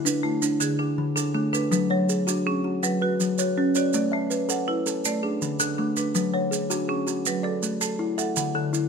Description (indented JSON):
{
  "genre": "southern african traditional, mbira-style interlocking cycle",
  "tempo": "108 BPM (dotted quarters)",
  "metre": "12/8",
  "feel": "straight",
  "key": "unclear",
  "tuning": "A4 = 440 Hz",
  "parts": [
    { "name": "kalimba", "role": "arpeggios", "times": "0.0-8.9 s", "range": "D3 to E5", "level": "-25 LUFS", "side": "left 2 dB", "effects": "none" },
    { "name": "marimba with hard mallets", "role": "arpeggios", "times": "0.0-8.9 s", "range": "D3 to F#5", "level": "-27 LUFS", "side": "right 3 dB", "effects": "none" },
    { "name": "maracas", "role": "percussion", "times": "0.1-8.9 s", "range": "none", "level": "-29 LUFS", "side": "right 10 dB", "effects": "none" }
  ],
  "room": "light reverb",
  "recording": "close, detailed microphones",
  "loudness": "-22 LUFS",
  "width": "side -6 dB against mid",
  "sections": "0.0-8.9 A section",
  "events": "none",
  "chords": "0.0 D5; 1.7 F#5; 3.9 A; 5.0 D5; 6.2 F#5; 7.3 A5; 8.4 D",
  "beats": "0.06 0.61 1.17 | 1.72 2.27 2.83 3.38 | 3.94 4.49 5.04 5.60 | 6.15 6.71 7.26 7.82 | 8.37"
}